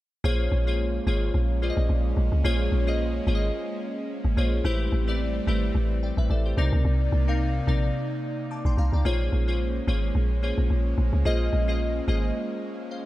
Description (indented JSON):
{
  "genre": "amapiano",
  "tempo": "109 BPM",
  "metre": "4/4",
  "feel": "swing 55% on 16ths",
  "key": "Bb dorian",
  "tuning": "A4 = 440 Hz",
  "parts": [
    { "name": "glassy digital keys", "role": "accompaniment", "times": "0.2-13.1 s", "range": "C3 to D6", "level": "-29 LUFS", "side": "left 2 dB", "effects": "chorus" },
    { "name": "airy breathy pad", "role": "sustained chords", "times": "0.2-13.1 s", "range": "C3 to D5", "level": "-34 LUFS", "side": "right 2 dB", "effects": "chorus" },
    { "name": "deep log drum bass", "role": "bass", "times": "0.2-12.3 s", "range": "Ab1 to Db2", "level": "-24 LUFS", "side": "equal", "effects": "none" }
  ],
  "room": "little or no reverb",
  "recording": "none",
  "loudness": "-23 LUFS",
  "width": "side -16 dB against mid",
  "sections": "0.2-13.1 A section",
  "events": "drop 0.2-13.1",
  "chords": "0.2 Bbm9; 4.6 Am9; 6.6 Cm9; 9.0 Bbm9"
}